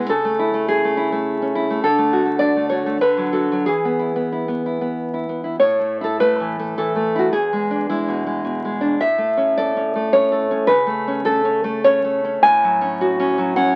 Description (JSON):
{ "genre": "romantic piece for solo classical guitar", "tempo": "90-109 BPM", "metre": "3/4", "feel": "rubato", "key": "A major", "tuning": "A4 = 440 Hz", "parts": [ { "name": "nylon-string guitar", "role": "solo", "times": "0.0-13.8 s", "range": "E2 to G#5", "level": "-19 LUFS", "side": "equal", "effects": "none" } ], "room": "moderate studio reverb, RT60 0.7 s", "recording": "very old 78 rpm record, vinyl crackle", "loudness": "-19 LUFS", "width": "mono", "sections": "0.0-5.6 A section; 5.6-13.8 B section", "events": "none", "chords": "0.1 A/C#; 1.8 D; 3.0 Bm/D; 3.7 E; 5.6 A5; 7.3 E7; 9.0 A; 10.7 A/C#; 12.4 F#m/A", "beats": "| 0.09 0.67 1.25 | 1.83 2.41 3.01 | 3.66 4.31 4.96 | 5.60 6.20 6.77 | 7.33 7.90 8.46 | 9.02 9.58 10.14 | 10.70 11.25 11.82 | 12.42 12.99 13.55" }